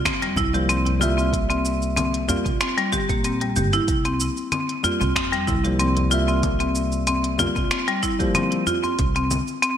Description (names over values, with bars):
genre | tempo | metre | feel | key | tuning
organic downtempo | 94 BPM | 4/4 | swing 53% on 16ths | unclear | A4 = 439 Hz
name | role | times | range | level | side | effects
marimba with hard mallets | arpeggios | 0.1-9.8 s | G3 to G4 | -22 LUFS | left 1 dB | digital delay
upright bass | bass | 0.1-9.4 s | G1 to F2 | -25 LUFS | right 1 dB | sidechain pumping
electronic kick drum | drums | 0.1-9.1 s | none | -27 LUFS | right 1 dB | none
organic electronic drum kit | drums | 0.1-9.8 s | congas, finger snaps, hi-hat, shaker | -28 LUFS | left 1 dB | gated reverb
djembe | percussion | 0.2-9.0 s | none | -33 LUFS | left 1 dB | none
bell-like tine electric piano | accompaniment | 0.5-8.6 s | F3 to E5 | -27 LUFS | left 2 dB | sidechain pumping, digital delay
room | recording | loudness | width
moderate lush hall reverb, RT60 1.6 s, studio reverb | bright 1980s-style digital production | -19 LUFS | side -9 dB against mid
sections
0.0-9.8 A section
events
none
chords
0.0 C7sus4